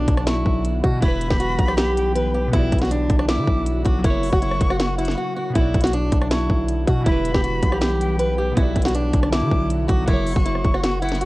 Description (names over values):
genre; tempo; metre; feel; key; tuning
hip hop, trap; 159 BPM; 4/4; half-time; B harmonic minor; A4 = 440 Hz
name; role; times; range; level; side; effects
fingerpicked swing-style acoustic guitar; melody; 0.0-11.3 s; D4 to B4; -24 LUFS; equal; none
glassy digital keys; accompaniment; 0.0-11.3 s; B2 to D5; -30 LUFS; right 1 dB; chorus
ethereal airy pad; sustained chords; 0.0-11.3 s; C#3 to G4; -30 LUFS; equal; ensemble chorus, built-in reverb
distorted 808-style bass; bass; 0.0-11.3 s; E1 to D3; -23 LUFS; equal; distortion
trap drum kit; drums; 0.1-11.3 s; hi-hat, kick drum, rim click, snare drum; -21 LUFS; equal; vintage 12-bit sampler grit
breathy jazz flute; second line; 0.3-11.3 s; F#5 to D6; -30 LUFS; left 2 dB; tape echo
room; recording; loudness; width
little or no reverb; worn, warbling old tape, cassette tape, warbly pitch drift; -17 LUFS; side -19 dB against mid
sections
0.0-11.3 A section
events
break 5.2-5.6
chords
0.0 Bm; 1.0 Em; 2.5 Bm; 4.0 F#; 5.6 Bm; 7.1 Em; 8.6 Bm; 10.1 F#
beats
0.27 0.65 | 1.02 1.40 1.78 2.16 | 2.53 2.91 3.29 3.67 | 4.04 4.42 4.80 5.17 | 5.55 5.93 6.31 6.68 | 7.06 7.44 7.82 8.19 | 8.57 8.95 9.33 9.70 | 10.08 10.46 10.84 11.21